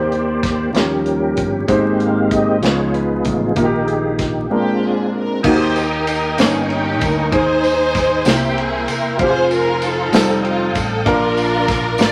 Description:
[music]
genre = slow gospel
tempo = 64 BPM (dotted quarters)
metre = 6/8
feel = straight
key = Eb major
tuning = A4 = 442 Hz
[part]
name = warm upright piano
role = accompaniment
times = 0.0-12.1 s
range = G2 to G5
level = -22 LUFS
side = equal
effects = none
[part]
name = tonewheel organ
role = sustained chords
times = 0.0-12.1 s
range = Eb3 to Eb6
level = -23 LUFS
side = equal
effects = slow rotary speaker, chorus vibrato
[part]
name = fingered electric bass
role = bass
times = 0.0-12.1 s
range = E1 to Eb2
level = -28 LUFS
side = equal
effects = none
[part]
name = modern studio drum kit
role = drums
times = 0.1-12.1 s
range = crash cymbal, hi-hat, kick drum, ride cymbal, snare drum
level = -24 LUFS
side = equal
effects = none
[part]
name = warm symphonic string section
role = melody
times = 4.5-12.1 s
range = Bb3 to D5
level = -21 LUFS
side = equal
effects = none
[part]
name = tambourine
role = percussion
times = 5.8-12.1 s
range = none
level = -36 LUFS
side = equal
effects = none
[sound]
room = moderate studio reverb, RT60 0.7 s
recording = vinyl crackle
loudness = -17 LUFS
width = mono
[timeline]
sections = 0.0-5.5 A section; 5.5-12.1 B section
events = tonewheel organ solo 0.0-5.5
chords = 0.0 Cm7/Eb; 0.7 Eb7; 1.7 Abmaj7; 2.6 Db9; 3.6 Eb/Bb; 4.5 Bb7; 5.5 Eb; 6.4 Eb7/G; 7.3 Ab/Eb; 8.3 C7; 9.2 Fm; 10.1 F9; 11.1 Bb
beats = 0.75 | 1.69 2.63 | 3.57 4.51 | 5.45 6.39 | 7.33 8.26 | 9.20 10.13 | 11.07 12.00

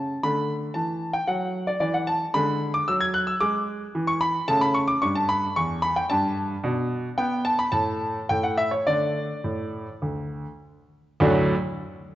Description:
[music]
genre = classical-period piano sonatina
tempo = 100-115 BPM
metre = 4/4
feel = rubato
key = D major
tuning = A4 = 439 Hz
[part]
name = clear grand piano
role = solo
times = 0.0-11.5 s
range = D2 to G#6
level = -22 LUFS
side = equal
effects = none
[sound]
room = wet recital hall reverb, RT60 1.7 s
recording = worn, warbling old tape, cassette tape, warbly pitch drift, nothing above 7.7 kHz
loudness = -22 LUFS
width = side -14 dB against mid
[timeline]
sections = 0.0-11.2 A section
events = slowing down 5.6-11.2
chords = 0.2 D; 2.3 E7/D; 4.5 A; 6.6 Bm7; 7.7 N.C.; 8.9 D5; 11.2 D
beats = | 0.23 0.75 1.28 1.81 | 2.35 2.88 3.41 3.95 | 4.48 5.02 5.56 6.10 | 6.64 7.18 7.73 8.29 | 8.86 9.45 10.04 10.62 | 11.21

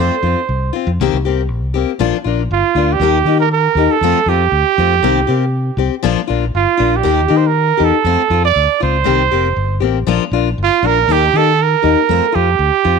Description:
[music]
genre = highlife guitar band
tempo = 119 BPM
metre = 4/4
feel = straight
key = Bb major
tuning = A4 = 438 Hz
[part]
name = warm trumpet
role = melody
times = 0.0-13.0 s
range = F4 to D5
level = -14 LUFS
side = right 12 dB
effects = none
[part]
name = picked steel-string acoustic guitar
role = accompaniment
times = 0.0-13.0 s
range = Eb3 to G4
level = -17 LUFS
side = left 14 dB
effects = none
[part]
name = fingered electric bass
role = bass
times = 0.0-13.0 s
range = F1 to Eb3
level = -17 LUFS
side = left 1 dB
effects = none
[sound]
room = light reverb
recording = 1960s-style stereo with parts hard left and right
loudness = -12 LUFS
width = side -5 dB against mid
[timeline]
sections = 0.0-2.0 A section; 2.0-13.0 B section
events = trumpet solo 0.0-2.0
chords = 0.0 F; 1.0 Cm7; 2.0 Bb; 3.0 Eb; 4.0 F; 5.0 Cm7; 6.0 Bb; 7.0 Eb; 8.1 F; 9.1 Cm7; 10.1 Bb; 11.1 Eb; 12.1 F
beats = 0.49 1.00 1.51 | 2.01 2.52 3.02 3.52 | 4.03 4.53 5.04 5.54 | 6.04 6.55 7.05 7.55 | 8.06 8.56 9.06 9.57 | 10.07 10.58 11.08 11.59 | 12.09 12.59

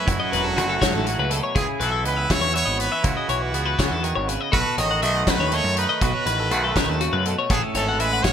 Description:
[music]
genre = math rock and midwest emo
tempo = 81 BPM (dotted quarters)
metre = 6/8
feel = straight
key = unclear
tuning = A4 = 439 Hz
[part]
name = brilliant trumpet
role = melody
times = 0.0-8.3 s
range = F#4 to D#5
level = -25 LUFS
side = right 1 dB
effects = ping-pong delay
[part]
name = twangy electric guitar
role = accompaniment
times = 0.0-8.3 s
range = F#2 to F#4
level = -28 LUFS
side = right 7 dB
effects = wide subtle chorus
[part]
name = twelve-string electric guitar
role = arpeggios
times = 0.0-8.3 s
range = F#4 to F#5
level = -26 LUFS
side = left 7 dB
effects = wide subtle chorus
[part]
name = growling picked electric bass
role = bass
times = 0.1-8.3 s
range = E1 to F#2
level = -26 LUFS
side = equal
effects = overdrive
[part]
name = loose indie drum kit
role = drums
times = 0.1-8.3 s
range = hi-hat, kick drum, snare drum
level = -25 LUFS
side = left 1 dB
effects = gated reverb
[sound]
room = light reverb, studio reverb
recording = bright 1980s-style digital production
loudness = -19 LUFS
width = side -8 dB against mid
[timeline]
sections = 0.0-8.3 A section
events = none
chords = 0.0 F#m7; 1.6 C#m7; 4.5 B7; 7.5 Amaj7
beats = | 0.07 0.81 | 1.56 2.30 | 3.04 3.78 | 4.53 5.27 | 6.01 6.75 | 7.50 8.24

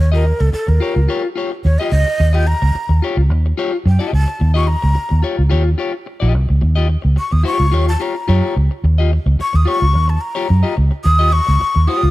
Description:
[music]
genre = funk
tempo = 108 BPM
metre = 4/4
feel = straight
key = Eb mixolydian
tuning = A4 = 440 Hz
[part]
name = breathy mellow jazz flute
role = melody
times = 0.0-12.1 s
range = A4 to Eb6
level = -20 LUFS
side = left 1 dB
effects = none
[part]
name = electric guitar at the edge of break-up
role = accompaniment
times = 0.0-12.1 s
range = F4 to Eb5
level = -22 LUFS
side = left 5 dB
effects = none
[part]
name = vintage muted fingered electric bass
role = bass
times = 0.0-12.1 s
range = Bb1 to Gb2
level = -13 LUFS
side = equal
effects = none
[sound]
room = little or no reverb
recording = dark, warm production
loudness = -13 LUFS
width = side -16 dB against mid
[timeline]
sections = 0.0-12.1 A section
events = flute solo 0.0-12.1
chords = 0.0 Eb9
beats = 0.53 1.08 1.64 | 2.19 2.75 3.30 3.85 | 4.41 4.96 5.51 6.07 | 6.62 7.18 7.73 8.29 | 8.84 9.39 9.95 10.50 | 11.06 11.61

